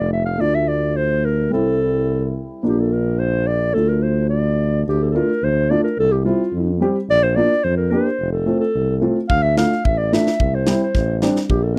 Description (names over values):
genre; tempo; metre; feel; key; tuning
klezmer; 108 BPM; 2/4; straight; D minor; A4 = 443 Hz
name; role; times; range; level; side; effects
dark clarinet; melody; 0.0-11.8 s; F4 to F5; -22 LUFS; equal; none
dark upright piano; accompaniment; 0.0-11.8 s; G3 to G4; -23 LUFS; equal; none
warm tuba; bass; 0.0-11.8 s; F1 to F2; -23 LUFS; equal; none
crisp fusion drum kit; drums; 9.3-11.6 s; kick drum, snare drum; -22 LUFS; equal; none
room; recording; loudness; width
small room ambience; dry, close 1970s-style studio recording; -19 LUFS; mono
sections
0.0-4.9 A section; 4.9-11.8 A section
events
none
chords
0.4 Dm; 1.5 C; 2.6 Bb; 3.8 Dm; 6.0 C; 7.1 Bb; 8.2 F; 9.3 Dm; 10.4 C5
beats
| 0.40 0.96 | 1.52 2.08 | 2.64 3.20 | 3.75 4.31 | 4.87 5.42 | 5.98 6.53 | 7.09 7.64 | 8.19 8.74 | 9.29 9.84 | 10.39 10.94 | 11.49